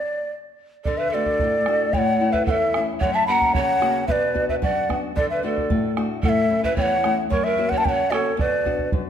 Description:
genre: andean folk, Andean ensemble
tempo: 112 BPM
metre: 2/4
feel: straight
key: unclear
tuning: A4 = 444 Hz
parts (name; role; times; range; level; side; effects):
- breathy mellow large quena; melody; 0.0-8.9 s; C#5 to B5; -22 LUFS; left 1 dB; none
- breathy large pan pipes; second line; 0.8-8.9 s; A4 to F#5; -25 LUFS; right 3 dB; none
- nylon-string guitar; accompaniment; 0.9-9.1 s; E2 to F#4; -26 LUFS; left 4 dB; none
- bombo; percussion; 0.9-9.0 s; none; -28 LUFS; right 2 dB; none
room: moderate scoring stage reverb, RT60 1.6 s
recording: minimal, uncompressed stereo recording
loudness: -19 LUFS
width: side -8 dB against mid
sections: 0.8-9.1 A section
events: stop 0.0-0.8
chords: 0.0 N.C.; 0.8 D; 1.9 A; 3.0 F#; 4.1 Bm; 5.2 D; 6.2 A; 7.3 F#; 8.4 Bm

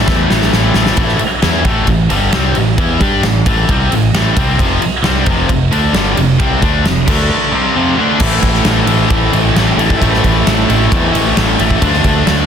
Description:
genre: hard rock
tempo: 133 BPM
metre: 4/4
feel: straight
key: A minor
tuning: A4 = 440 Hz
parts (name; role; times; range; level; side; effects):
- crunchy overdriven guitar; riff; 0.0-1.0, 4.6-12.5 s; F2 to F4; -19 LUFS; left 1 dB; none
- scooped high-gain guitar; riff; 0.0-12.5 s; F2 to G4; -17 LUFS; right 9 dB; distortion
- tight distorted guitar; riff; 0.0-12.5 s; F2 to G4; -16 LUFS; left 10 dB; distortion
- picked electric bass; bass; 0.0-12.4 s; F1 to G2; -17 LUFS; equal; none
- huge arena drum kit; drums; 0.1-12.4 s; crash cymbal, kick drum, ride cymbal, snare drum; -15 LUFS; equal; none
room: small room ambience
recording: dense, heavily limited modern master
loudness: -10 LUFS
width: side -8 dB against mid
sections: 1.0-8.2 A section; 8.2-12.5 B section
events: drum fill 0.0-1.0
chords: 0.0 Am; 4.6 F5; 7.1 D5; 7.5 F5; 8.2 Am; 11.8 Dm

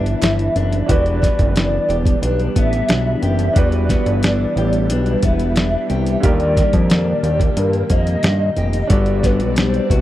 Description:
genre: indie pop, bedroom pop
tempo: 90 BPM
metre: 4/4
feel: straight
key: unclear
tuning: A4 = 440 Hz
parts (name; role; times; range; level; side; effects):
- hollow clarinet-like synth lead; melody; 0.0-10.0 s; Bb4 to E5; -22 LUFS; equal; ensemble chorus, tape echo
- bright upright piano; accompaniment; 0.0-10.0 s; D3 to D5; -30 LUFS; right 5 dB; none
- fingerpicked steel-string acoustic guitar; accompaniment; 0.0-10.0 s; Eb3 to G4; -23 LUFS; left 3 dB; wide subtle chorus, warbly pitch drift
- string machine, cellos; sustained chords; 0.0-10.0 s; Bb2 to D5; -26 LUFS; equal; phaser, ensemble chorus
- fat analog bass; bass; 0.0-10.0 s; E1 to G2; -19 LUFS; equal; none
- dusty soul sampler-style drum kit; drums; 0.1-10.0 s; hi-hat, kick drum, snare drum; -17 LUFS; equal; none
room: little or no reverb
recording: dry, close 1970s-style studio recording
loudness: -14 LUFS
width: side -14 dB against mid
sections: 0.9-10.0 A section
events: none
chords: 0.0 G6; 0.9 Em7; 6.2 Ebmaj7; 8.9 Gmaj7

